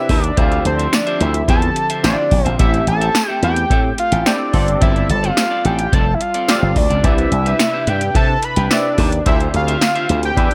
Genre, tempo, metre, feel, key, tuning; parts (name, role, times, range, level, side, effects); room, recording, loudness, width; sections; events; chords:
early-eighties boogie funk; 108 BPM; 4/4; straight; A4 = 440 Hz
fat analog lead; melody; 0.0-10.5 s; C5 to B5; -22 LUFS; equal
barky tine electric piano; accompaniment; 0.0-10.5 s; C4 to G5; -26 LUFS; equal; ensemble chorus
chorused pulse-width pad; sustained chords; 0.0-10.5 s; C3 to E5; -31 LUFS; equal
electric guitar at the edge of break-up; riff; 0.1-10.5 s; C4 to G5; -28 LUFS; equal; subtle chorus
slap bass with an envelope filter; bass; 0.1-10.5 s; F1 to C3; -20 LUFS; equal
electro analog drum machine; drums; 0.1-10.5 s; hi-hat, kick drum, snare drum; -20 LUFS; equal
tambourine; percussion; 0.9-9.9 s; -29 LUFS; equal
little or no reverb; -16 LUFS; mono
0.0-10.5 A section
0.4 Dm11; 2.6 Am7; 4.5 G9sus4; 7.0 Cmaj9; 9.3 Dm11